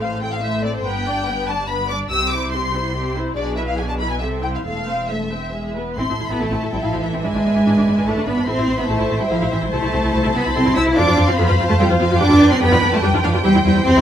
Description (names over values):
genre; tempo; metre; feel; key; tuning
quick classical-period movement for string orchestra; 144 BPM; 3/4; rubato; A minor; A4 = 436 Hz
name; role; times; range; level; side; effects
warm symphonic violin section; melody; 0.0-14.0 s; C5 to E6; -25 LUFS; left 3 dB; none
rich symphonic violin section; second line; 0.0-14.0 s; A4 to E6; -24 LUFS; left 1 dB; none
rich symphonic viola section; accompaniment; 0.0-14.0 s; G#3 to D5; -24 LUFS; equal; none
rich symphonic cello section; bass; 0.0-14.0 s; E2 to E4; -20 LUFS; right 1 dB; none
rich symphonic double bass section; bass; 0.0-14.0 s; E1 to F2; -23 LUFS; equal; none
room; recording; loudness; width
light reverb; none; -16 LUFS; side -10 dB against mid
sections
0.0-6.0 A section; 6.0-14.0 B section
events
none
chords
0.0 Am; 0.9 G; 2.1 C; 3.4 E7/B; 4.2 Am/C; 4.7 Am/E; 5.5 E; 6.0 Am; 7.2 E7/G#; 8.5 Am; 9.7 Am/C; 11.0 G7/F; 13.4 C/E